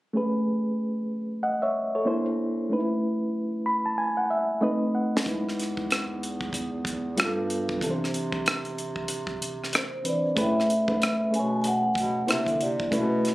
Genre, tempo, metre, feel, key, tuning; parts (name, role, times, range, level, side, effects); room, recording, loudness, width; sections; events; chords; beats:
R&B, neo-soul; 94 BPM; 4/4; swing 61% on 16ths; A4 = 440 Hz
reed electric piano; accompaniment; 0.1-13.3 s; E3 to B5; -26 LUFS; equal; fast tremolo
tight funk drum kit; drums; 5.2-13.3 s; hi-hat, kick drum, rim click, snare drum; -28 LUFS; equal
warm bass clarinet; bass; 5.3-13.3 s; E2 to D3; -33 LUFS; equal
vibraphone with soft mallets; melody; 9.8-13.3 s; B4 to G#5; -27 LUFS; equal; tape echo
moderate small room reverb, RT60 0.6 s; recorded on a phone in the room, club reverb, compression; -24 LUFS; side -18 dB against mid
0.2-10.4 A section; 10.4-13.3 B section
reed electric piano fill 3.3-5.3; drum fill 4.0-5.3
0.2 Amaj9; 2.1 C9; 2.7 B9sus4; 4.6 B7b9; 5.3 Emaj7; 7.2 G9; 7.8 Cmaj9; 10.4 Amaj9; 12.3 C9
| 0.15 0.79 1.43 2.07 | 2.71 3.34 3.98 4.62 | 5.26 5.90 6.54 7.17 | 7.81 8.45 9.09 9.73 | 10.36 11.00 11.64 12.28 | 12.92